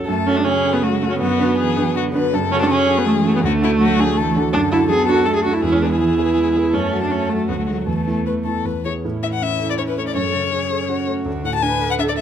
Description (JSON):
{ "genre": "quick classical-period movement for piano quartet", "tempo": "162 BPM", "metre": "3/4", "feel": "rubato", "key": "F# minor, A major from 4.5 s", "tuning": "A4 = 440 Hz", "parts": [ { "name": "clear viola", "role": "accompaniment", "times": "0.0-12.2 s", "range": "F#3 to A4", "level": "-20 LUFS", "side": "right 2 dB", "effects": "none" }, { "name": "warm concert grand piano", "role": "accompaniment", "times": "0.0-12.2 s", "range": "D2 to B4", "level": "-21 LUFS", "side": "right 1 dB", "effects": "none" }, { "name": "warm violin", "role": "melody", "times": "0.1-12.2 s", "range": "E4 to A5", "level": "-23 LUFS", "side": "left 9 dB", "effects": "none" }, { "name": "warm cello", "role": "second line", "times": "0.1-12.2 s", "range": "C#3 to B4", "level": "-26 LUFS", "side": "right 5 dB", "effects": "none" } ], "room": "light reverb", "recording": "close, detailed microphones", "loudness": "-16 LUFS", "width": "side -9 dB against mid", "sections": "0.1-9.0 A section; 9.0-12.2 B section", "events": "none", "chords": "0.1 F#m; 1.2 Bm/F#; 2.3 F#m; 3.4 D; 4.5 D/F#; 5.6 E; 6.7 F#m; 7.5 D; 7.9 Esus4; 8.6 E; 9.0 A; 10.2 F#m; 11.3 D" }